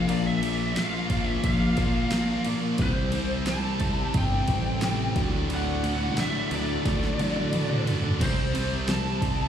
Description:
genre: classic rock.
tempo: 89 BPM.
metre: 4/4.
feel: straight.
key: unclear.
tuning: A4 = 440 Hz.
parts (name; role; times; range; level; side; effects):
lead guitar through a small cranked amp; melody; 0.0-9.5 s; C5 to A5; -32 LUFS; equal; overdrive, slapback echo, analog delay.
picked twelve-string acoustic guitar; accompaniment; 0.0-9.5 s; Bb2 to D5; -39 LUFS; left 1 dB; wide subtle chorus, slapback echo.
bright tonewheel organ; sustained chords; 0.0-8.2 s; C4 to D5; -41 LUFS; equal; none.
distorted electric guitar; riff; 0.0-9.5 s; D2 to C4; -33 LUFS; right 11 dB; overdrive, slapback echo.
overdriven electric guitar; riff; 0.0-9.5 s; D2 to C4; -32 LUFS; left 8 dB; none.
thick fuzz guitar; riff; 0.0-9.5 s; D2 to C4; -33 LUFS; equal; distortion.
fuzz picked electric bass; bass; 0.0-9.5 s; G1 to D3; -29 LUFS; equal; overdrive.
deep house drum kit; drums; 0.1-9.4 s; crash cymbal, kick drum, ride cymbal, snare drum, toms; -30 LUFS; equal; none.
room: light reverb.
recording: live gig heard through the venue's PA, recital hall reverb.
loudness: -23 LUFS.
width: side -9 dB against mid.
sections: 0.0-8.2 A section; 8.2-9.5 A section.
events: drum fill 6.8-8.2.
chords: 0.0 Bb; 2.8 C; 5.2 D; 8.2 C.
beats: | 0.08 0.76 1.43 2.11 | 2.79 3.46 4.14 4.82 | 5.49 6.17 6.85 7.52 | 8.20 8.88.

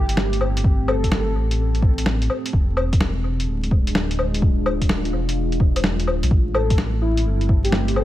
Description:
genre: future garage.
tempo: 127 BPM.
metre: 4/4.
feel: swing 67% on 16ths.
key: A minor.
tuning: A4 = 440 Hz.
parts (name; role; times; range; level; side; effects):
airy dreamy lead; melody; 0.0-1.4, 6.5-8.0 s; E4 to A4; -28 LUFS; left 1 dB; chorus, dub echo.
deep dark ambient pad; sustained chords; 0.0-8.0 s; G#3 to G4; -28 LUFS; equal; chorus, built-in reverb, sidechain pumping.
dark detuned saw bass; bass; 0.0-8.0 s; D1 to B1; -22 LUFS; equal; none.
lo-fi sampler-style drum kit; drums; 0.1-8.0 s; hi-hat, snare drum, woodblock; -24 LUFS; left 1 dB; none.
electronic kick drum; drums; 0.6-7.6 s; none; -18 LUFS; equal; none.
room: light reverb.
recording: echo-heavy mix, vinyl crackle.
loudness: -18 LUFS.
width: side -14 dB against mid.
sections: 0.0-8.0 A section.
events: none.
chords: 0.0 Am7; 2.5 E7b9; 6.3 Am7.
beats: 0.17 | 0.64 1.12 1.59 2.06 | 2.53 3.01 3.48 3.95 | 4.42 4.90 5.37 5.84 | 6.31 6.79 7.26 7.73.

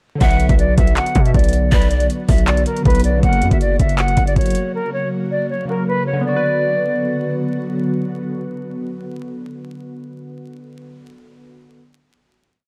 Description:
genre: hip hop, trap.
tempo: 159 BPM.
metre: 4/4.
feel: half-time.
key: B harmonic minor.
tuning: A4 = 439 Hz.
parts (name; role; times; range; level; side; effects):
silver concert flute; melody; 0.2-7.3 s; A#4 to F#5; -23 LUFS; equal; low-pass filter.
breathy large pan pipes; second line; 0.2-2.1 s; D5 to E5; -30 LUFS; equal; delay.
glassy digital keys; accompaniment; 0.2-11.8 s; C#3 to B4; -27 LUFS; equal; chorus, low-pass filter.
ethereal airy pad; sustained chords; 1.1-9.6 s; C#3 to F#4; -29 LUFS; equal; ensemble chorus, built-in reverb.
distorted 808-style bass; bass; 0.2-4.5 s; F#1 to B2; -20 LUFS; equal; distortion.
garage drum kit; drums; 0.2-4.6 s; handclaps, hi-hat, kick drum; -18 LUFS; equal; none.
room: little or no reverb.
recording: dark, warm production, vinyl crackle.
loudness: -17 LUFS.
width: mono.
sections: 0.2-6.2 hook; 6.2-9.3 final chord.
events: none.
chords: 0.2 Bm; 3.2 F#; 6.2 Bm.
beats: | 0.21 0.59 0.97 1.34 | 1.72 2.10 2.48 2.85 | 3.23 3.61 3.98 4.36 | 4.74 5.12 5.49 5.87 | 6.25 6.63 7.00 7.38 | 7.76 8.14 8.51 8.89.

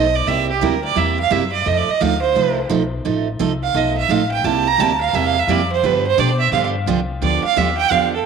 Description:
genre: country, western swing.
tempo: 173 BPM.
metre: 4/4.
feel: swing 65% on 8ths.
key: C major.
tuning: A4 = 443 Hz.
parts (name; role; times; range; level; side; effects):
clear fiddle; second line; 0.0-8.3 s; G4 to Bb5; -18 LUFS; right 6 dB; none.
picked steel-string acoustic guitar; accompaniment; 0.0-8.1 s; C3 to A4; -21 LUFS; right 7 dB; none.
upright bass; bass; 0.0-8.2 s; A1 to B2; -23 LUFS; left 2 dB; none.
room: wet spring reverb, RT60 2.0 s, small room ambience.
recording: 1960s-style stereo.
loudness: -15 LUFS.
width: side -6 dB against mid.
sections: 0.0-8.3 A section.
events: fiddle solo 0.0-8.3.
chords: 0.3 C7; 1.7 F7; 4.4 C7; 5.8 G7.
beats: | 0.27 0.62 0.96 1.31 | 1.66 2.01 2.35 2.70 | 3.05 3.40 3.75 4.09 | 4.44 4.79 5.13 5.48 | 5.83 6.18 6.53 6.87 | 7.22 7.57 7.91.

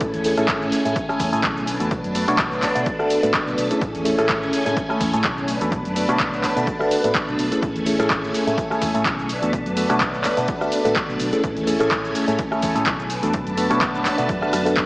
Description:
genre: filtered disco house.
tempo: 126 BPM.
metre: 4/4.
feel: swing 55% on 16ths.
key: unclear.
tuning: A4 = 442 Hz.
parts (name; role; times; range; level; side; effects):
reed electric piano; accompaniment; 0.0-14.9 s; A3 to C#5; -22 LUFS; equal; phaser, sidechain pumping.
string machine, full ensemble; sustained chords; 0.0-14.9 s; A3 to A5; -25 LUFS; equal; phaser, ensemble chorus, sidechain pumping.
hollow-body short-scale fingered electric bass; bass; 0.0-14.9 s; A1 to B2; -30 LUFS; equal; sidechain pumping.
electronic kick drum; drums; 0.0-14.9 s; none; -28 LUFS; equal; none.
punchy analog drum machine; drums; 0.0-14.9 s; cabasa, handclaps, hi-hat, rim click; -25 LUFS; equal; sidechain pumping on hats, sidechain pumping on perc.
room: wet lush hall reverb, RT60 1.7 s, digital ambience.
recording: dreamy mix soaked in reverb, small speaker sound.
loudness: -18 LUFS.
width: side -23 dB against mid.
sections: 0.0-14.9 A section.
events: none.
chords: 0.0 Amaj7; 1.7 Bm7; 3.8 Amaj7; 5.5 Bm7; 7.6 Amaj7; 9.3 Bm7; 11.4 Amaj7; 13.1 Bm7.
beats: | 0.01 0.48 0.96 1.43 | 1.91 2.39 2.86 3.34 | 3.81 4.29 4.77 5.24 | 5.72 6.20 6.67 7.15 | 7.62 8.10 8.58 9.05 | 9.53 10.01 10.48 10.96 | 11.43 11.91 12.39 12.86 | 13.34 13.81 14.29 14.77.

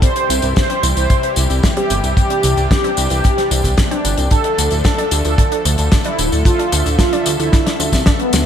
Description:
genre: italo disco.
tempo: 112 BPM.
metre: 4/4.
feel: straight.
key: C major.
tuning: A4 = 442 Hz.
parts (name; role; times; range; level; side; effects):
mellow synth brass; melody; 0.0-8.5 s; B3 to C5; -19 LUFS; right 1 dB; chorus, ping-pong delay.
lush unison pad; sustained chords; 0.0-8.5 s; C3 to E5; -23 LUFS; equal; chorus.
analog pluck; arpeggios; 0.0-8.4 s; C2 to D4; -26 LUFS; right 4 dB; chorus, cassette tape, ping-pong delay.
damped 70s drum kit; drums; 0.0-8.4 s; hi-hat, snare drum, tambourine; -20 LUFS; left 2 dB; gated reverb.
kick drum; drums; 0.0-8.2 s; none; -14 LUFS; equal; none.
chorused synth bass; bass; 0.3-8.4 s; D1 to D2; -18 LUFS; equal; none.
room: moderate lush hall reverb, RT60 1.8 s, studio ambience.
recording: bright 1980s-style digital production.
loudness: -13 LUFS.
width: side -9 dB against mid.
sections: 0.0-8.5 A section.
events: drum fill 7.5-8.5.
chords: 0.0 C; 4.3 Dm.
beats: | 0.03 0.56 1.10 1.64 | 2.17 2.71 3.24 3.78 | 4.31 4.85 5.39 5.92 | 6.46 6.99 7.53 8.06.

